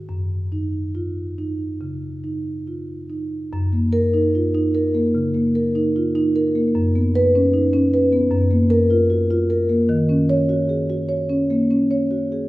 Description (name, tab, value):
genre	classical, contemporary piece for solo marimba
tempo	69-78 BPM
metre	4/4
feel	rubato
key	F# major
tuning	A4 = 439 Hz
part	marimba with soft mallets	solo	0.0-12.5 s	F#2 to C#5	-17 LUFS	equal	none
room	wet recital hall reverb, RT60 1.6 s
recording	heard from further back in the room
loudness	-17 LUFS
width	side -17 dB against mid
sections	0.0-3.5 A section; 3.5-12.5 A section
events	none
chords	0.1 F#5; 3.5 F#6; 6.8 C#11/F#; 8.3 F#maj7; 9.9 D#m7